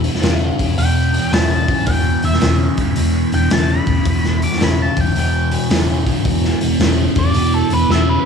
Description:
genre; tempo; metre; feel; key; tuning
blues rock power trio and southern rock; 110 BPM; 4/4; swing 66% on 8ths; E minor; A4 = 437 Hz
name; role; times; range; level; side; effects
crunchy overdriven guitar; riff; 0.0-8.2 s; E2 to C#3; -18 LUFS; equal; phaser
hollow-body short-scale fingered electric bass; bass; 0.0-8.2 s; E1; -18 LUFS; left 1 dB; none
raw garage drum kit; drums; 0.0-8.1 s; hi-hat, kick drum, snare drum; -20 LUFS; equal; none
octave-fuzz lead guitar; melody; 0.8-8.3 s; A4 to D6; -22 LUFS; equal; distortion
room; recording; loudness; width
light reverb; small room reverb; -14 LUFS; side -6 dB against mid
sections
0.0-8.3 A section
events
lead electric guitar solo 0.0-8.3; drum fill 7.9-8.3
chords
0.0 E5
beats
0.23 0.78 1.33 | 1.88 2.42 2.97 3.52 | 4.07 4.61 5.16 5.71 | 6.26 6.80 7.35 7.90

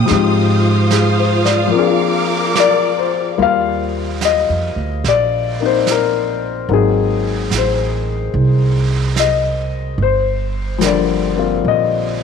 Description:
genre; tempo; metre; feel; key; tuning
jazz ballad; 73 BPM; 4/4; swing 67% on 8ths; Eb major; A4 = 439 Hz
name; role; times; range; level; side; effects
warm grand piano; accompaniment; 0.0-12.2 s; D3 to F5; -16 LUFS; left 9 dB; none
warm studio string section; sustained chords; 0.0-3.4 s; F4 to Eb6; -18 LUFS; right 2 dB; none
upright bass; bass; 0.0-12.2 s; G1 to Ab2; -18 LUFS; right 2 dB; none
vintage brush drum kit; drums; 0.1-12.2 s; brushed snare drum, hi-hat, snare drum; -25 LUFS; right 9 dB; none
room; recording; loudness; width
moderate echo chamber reverb, RT60 2.3 s; 1960s-style stereo with parts hard left and right; -13 LUFS; side -6 dB against mid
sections
0.0-3.4 A section; 3.4-12.2 B section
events
upright bass solo 0.0-3.4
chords
0.1 Fm7; 1.7 Bb7; 3.4 Ebmaj9; 6.7 Ab9; 10.0 Gm7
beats
| 0.07 0.90 1.72 2.55 | 3.38 4.21 5.04 5.86 | 6.68 7.51 8.33 9.15 | 9.98 10.80 11.62

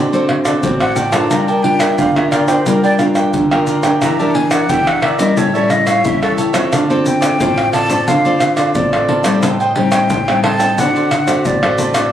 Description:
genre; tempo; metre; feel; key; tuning
samba and choro; 89 BPM; 4/4; straight; D minor; A4 = 441 Hz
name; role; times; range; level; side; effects
cavaquinho; accompaniment; 0.0-12.1 s; F4 to G5; -19 LUFS; right 2 dB; none
nylon-string guitar; accompaniment; 0.0-12.1 s; A2 to Bb4; -16 LUFS; left 1 dB; none
egg shaker, pandeiro, tamborim and surdo; percussion; 0.1-12.1 s; none; -18 LUFS; equal; none
breathy mellow silver concert flute; melody; 0.8-12.1 s; A4 to Bb5; -17 LUFS; equal; none
room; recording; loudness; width
moderate studio reverb, RT60 0.7 s; recorded on a phone in the room, club reverb; -12 LUFS; side -10 dB against mid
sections
0.0-12.1 A section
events
flute solo 0.0-12.1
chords
0.0 D7; 1.3 Gm7; 4.0 Em7b5; 5.4 A7; 6.7 Dm7; 9.4 Am7b5; 10.8 D7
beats
0.63 | 1.31 1.99 2.66 3.34 | 4.02 4.69 5.37 6.05 | 6.72 7.40 8.08 8.75 | 9.43 10.10 10.78 11.46

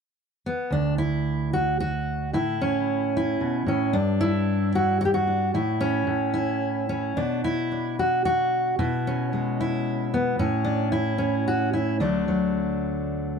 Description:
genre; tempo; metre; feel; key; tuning
folk, solo fingerstyle acoustic guitar; 112 BPM; 3/4; rubato; D major; A4 = 440 Hz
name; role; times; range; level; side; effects
fingerpicked steel-string acoustic guitar; solo; 0.5-13.4 s; D2 to G4; -22 LUFS; equal; none
room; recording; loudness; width
moderate studio reverb, RT60 0.5 s; close, detailed microphones; -22 LUFS; side -6 dB against mid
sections
0.7-13.4 A section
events
none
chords
0.0 N.C.; 2.3 A; 3.9 G5; 5.5 N.C.; 7.2 Bm; 8.8 E/B; 10.4 N.C.; 12.0 D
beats
0.17 | 0.71 1.25 1.79 | 2.34 2.87 3.40 | 3.94 4.46 5.00 | 5.54 6.07 6.62 | 7.17 7.72 8.26 | 8.79 9.33 9.87 | 10.40 10.93 11.46 | 12.00 12.54 13.10

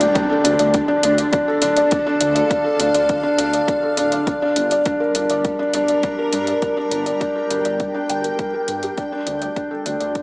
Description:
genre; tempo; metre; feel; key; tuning
piano and strings electronica; 102 BPM; 4/4; straight; D minor; A4 = 440 Hz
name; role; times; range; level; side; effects
granular cloud pad; sustained chords; 0.0-10.2 s; D3 to G5; -26 LUFS; equal; built-in reverb
felt-muted upright piano; riff; 0.0-10.2 s; D4 to G5; -18 LUFS; equal; digital delay
dark detuned saw bass; bass; 0.0-10.2 s; D1 to G2; -26 LUFS; equal; sidechain pumping
electronic hi-hat; drums; 0.0-10.2 s; none; -25 LUFS; equal; none
impact; sound effects; 0.0-1.9 s; none; -31 LUFS; equal; none
electronic kick drum; drums; 0.2-10.2 s; none; -24 LUFS; equal; none
room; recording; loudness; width
moderate echo chamber reverb, RT60 1.8 s; small speaker sound; -16 LUFS; side -25 dB against mid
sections
0.0-10.2 A section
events
fade-out 0.0-10.2; impact 0.0-1.9; filter sweep on ambient pad 0.0-10.2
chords
0.0 Dm; 4.3 Gm; 9.0 Dm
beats
0.15 0.74 1.33 | 1.92 2.50 3.09 3.68 | 4.27 4.86 5.45 6.03 | 6.62 7.21 7.80 8.39 | 8.97 9.56 10.15

